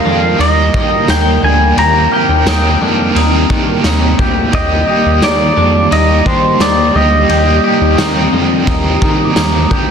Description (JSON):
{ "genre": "dream pop", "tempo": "87 BPM", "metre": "4/4", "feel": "straight", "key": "Eb major", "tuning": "A4 = 440 Hz", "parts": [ { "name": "pedal steel guitar", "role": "melody", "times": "0.0-9.3 s", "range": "C5 to Bb5", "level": "-14 LUFS", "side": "equal", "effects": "ping-pong delay" }, { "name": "overdriven electric guitar", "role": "accompaniment", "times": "0.0-9.9 s", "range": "Eb3 to G4", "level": "-17 LUFS", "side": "right 3 dB", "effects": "tremolo, lush chorus" }, { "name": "warbly tape-like pad", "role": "sustained chords", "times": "0.0-9.9 s", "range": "G3 to Bb4", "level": "-18 LUFS", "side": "equal", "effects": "chorus, built-in reverb" }, { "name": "clean electric guitar", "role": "arpeggios", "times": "0.0-9.9 s", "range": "D3 to G4", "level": "-20 LUFS", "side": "left 2 dB", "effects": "wide subtle chorus, ping-pong delay" }, { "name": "chorused synth bass", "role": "bass", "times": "0.0-9.9 s", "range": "D2 to Eb3", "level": "-15 LUFS", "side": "equal", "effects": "none" }, { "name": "glockenspiel with rubber mallets", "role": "texture", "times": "0.0-9.9 s", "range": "G5 to C7", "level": "-27 LUFS", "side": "right 1 dB", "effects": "none" }, { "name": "raw garage drum kit", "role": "drums", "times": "0.4-9.9 s", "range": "kick drum, ride cymbal, snare drum, tambourine", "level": "-18 LUFS", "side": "equal", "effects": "none" } ], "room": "moderate lush hall reverb, RT60 2.0 s, studio ambience", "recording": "dense, heavily limited modern master", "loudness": "-9 LUFS", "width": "side -7 dB against mid", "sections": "0.0-9.9 A section", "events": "none", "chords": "0.0 Cm7/Eb; 4.5 Ebmaj7; 7.3 Eb6" }